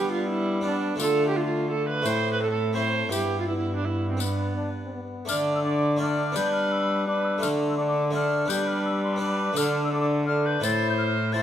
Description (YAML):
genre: classical, renaissance-style consort dance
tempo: 168 BPM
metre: 3/4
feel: straight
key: D dorian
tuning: A4 = 440 Hz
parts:
  - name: silver concert flute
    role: melody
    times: 0.0-11.4 s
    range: D5 to A6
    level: -32 LUFS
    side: left 4 dB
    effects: none
  - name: warm viola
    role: second line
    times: 0.0-11.4 s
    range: B3 to D5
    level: -28 LUFS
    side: right 4 dB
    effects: none
  - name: clear trombone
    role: accompaniment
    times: 0.0-11.4 s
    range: A3 to E4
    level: -30 LUFS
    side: left 2 dB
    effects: none
  - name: harpsichord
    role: accompaniment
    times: 0.0-11.4 s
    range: G2 to D5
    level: -32 LUFS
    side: left 1 dB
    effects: none
  - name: rich cello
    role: bass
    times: 0.0-11.4 s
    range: G2 to G3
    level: -28 LUFS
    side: equal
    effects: none
  - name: tambourine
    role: percussion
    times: 1.0-10.8 s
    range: none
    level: -35 LUFS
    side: left 8 dB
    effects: none
room: moderate recital hall reverb, RT60 1.6 s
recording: none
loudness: -23 LUFS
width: side -10 dB against mid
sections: 0.0-5.3 A section; 5.3-11.4 A section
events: none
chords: 0.0 G; 1.0 Dm; 2.1 Am; 3.1 Em/G; 4.2 G; 5.3 Dm; 6.4 G; 7.4 Dm; 8.5 G; 9.6 D5; 10.6 Am